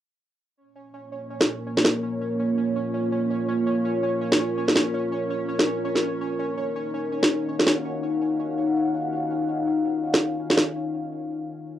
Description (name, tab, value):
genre	half-time drum and bass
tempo	165 BPM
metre	4/4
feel	swing 60% on 16ths, half-time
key	Bb minor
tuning	A4 = 439 Hz
part	dark analog pad	sustained chords	1.3-11.8 s	Bb3 to Gb5	-25 LUFS	left 1 dB	chorus, cassette tape
part	pulsing gated texture	texture	0.8-10.8 s	Db4 to Db5	-32 LUFS	right 2 dB	chorus, built-in reverb, cassette tape
part	electronic snare drum	drums	1.4-1.9, 4.3-7.8, 10.1-10.7 s	none	-19 LUFS	equal	overdrive, cassette tape
room	moderate small room reverb, RT60 0.5 s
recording	home recording on cassette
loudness	-22 LUFS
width	side -11 dB against mid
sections	0.6-11.8 A section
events	filter sweep on analog synth pad 0.6-11.8; break 10.8-11.8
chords	0.6 Bbm; 6.4 Ebmadd9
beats	| 0.57 0.94 1.30 1.67 | 2.03 2.39 2.76 3.12 | 3.48 3.85 4.21 4.57 | 4.94 5.30 5.67 6.03 | 6.39 6.76 7.12 7.48 | 7.85 8.21 8.57 8.94 | 9.30 9.66 10.03 10.39 | 10.76 11.12 11.48